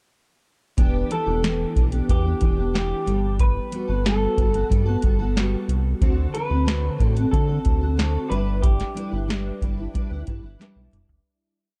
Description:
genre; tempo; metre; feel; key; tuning
indie pop, bedroom pop; 92 BPM; 4/4; straight; G major; A4 = 439 Hz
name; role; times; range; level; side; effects
picked steel-string acoustic guitar; accompaniment; 0.8-11.8 s; D3 to B4; -30 LUFS; equal; ensemble chorus, warbly pitch drift
round analog bass; bass; 0.8-11.2 s; E1 to D3; -26 LUFS; equal; none
soft vintage rhythm box; drums; 0.8-11.2 s; hi-hat, kick drum, snare drum, toms; -24 LUFS; equal; none
electric guitar through a small old amp; melody; 1.1-10.6 s; G4 to B4; -31 LUFS; equal; lush chorus, analog delay
room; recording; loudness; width
little or no reverb; dark, warm production; -22 LUFS; mono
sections
0.8-11.3 A section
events
fade-out 8.6-11.3; drum fill 10.6-11.3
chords
0.8 Em7; 3.1 Gmaj9; 6.0 D7; 8.3 G6

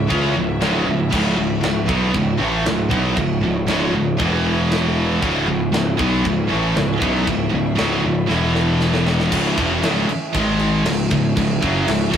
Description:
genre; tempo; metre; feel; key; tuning
heavy metal; 117 BPM; 4/4; straight; C# minor; A4 = 445 Hz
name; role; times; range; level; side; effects
warm studio string section; sustained chords; 0.0-12.2 s; D#3 to E5; -29 LUFS; equal; none
high-gain distorted guitar; riff; 0.0-12.2 s; C#2 to C#4; -25 LUFS; left 4 dB; distortion
high-gain distorted guitar; riff; 0.0-12.2 s; C#2 to C#4; -25 LUFS; left 1 dB; distortion
scooped high-gain guitar; riff; 0.0-12.2 s; C#2 to C#4; -23 LUFS; right 4 dB; distortion
fuzz picked electric bass; bass; 0.0-12.2 s; C#1 to C#2; -21 LUFS; equal; overdrive
tight metal drum kit; drums; 0.1-12.2 s; china cymbal, crash cymbal, kick drum, snare drum; -25 LUFS; equal; none
room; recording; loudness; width
moderate studio reverb, RT60 0.6 s; rough rehearsal-room recording, warm saturation; -16 LUFS; side -8 dB against mid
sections
0.0-9.3 A section; 9.3-12.2 B section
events
drum fill 8.3-9.3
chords
0.0 C#m; 4.2 E5; 5.2 C#m; 8.3 E5; 9.3 C#m; 10.3 G#5; 10.9 C#m

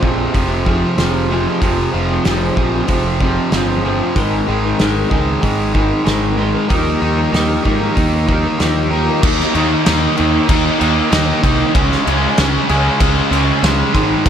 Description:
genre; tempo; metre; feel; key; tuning
quiet-loud alternative rock; 95 BPM; 4/4; straight; unclear; A4 = 440 Hz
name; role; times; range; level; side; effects
clean electric guitar; arpeggios; 0.0-9.2 s; Eb3 to Bb4; -22 LUFS; left 1 dB; ensemble chorus
cranked stack guitar; riff; 0.0-14.3 s; F2 to Eb4; -16 LUFS; right 1 dB; overdrive
fuzz picked electric bass; bass; 0.0-14.3 s; F1 to Ab2; -19 LUFS; equal; overdrive
loose indie drum kit; drums; 0.0-14.3 s; crash cymbal, hi-hat, kick drum, snare drum; -18 LUFS; equal; none
room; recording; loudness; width
moderate large studio reverb, RT60 1.0 s, small room reverb; none; -13 LUFS; side -9 dB against mid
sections
0.0-9.2 A section; 9.2-14.3 B section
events
none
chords
0.0 Fm; 4.2 Abadd9; 6.7 Ebadd9; 9.2 Eb5; 11.7 Db5

